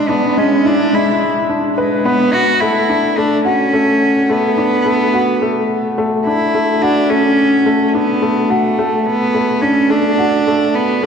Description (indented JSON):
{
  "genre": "electronica",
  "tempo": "107 BPM",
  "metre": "4/4",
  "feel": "straight",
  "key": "unclear",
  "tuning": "A4 = 441 Hz",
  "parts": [
    { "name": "rich cello", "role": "melody", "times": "0.0-11.1 s", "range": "G#3 to F#4", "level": "-14 LUFS", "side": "right 1 dB", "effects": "none" },
    { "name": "clear upright piano", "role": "riff", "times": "0.0-11.1 s", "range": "G#3 to B4", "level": "-16 LUFS", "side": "left 2 dB", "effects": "digital delay" }
  ],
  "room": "wet concert hall reverb, RT60 2.3 s",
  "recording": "none",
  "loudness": "-12 LUFS",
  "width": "side -6 dB against mid",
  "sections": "0.0-2.3 A section; 2.3-11.1 B section",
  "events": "build-up 0.0-2.3; drop 2.3-11.1",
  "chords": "0.0 E7; 2.3 D"
}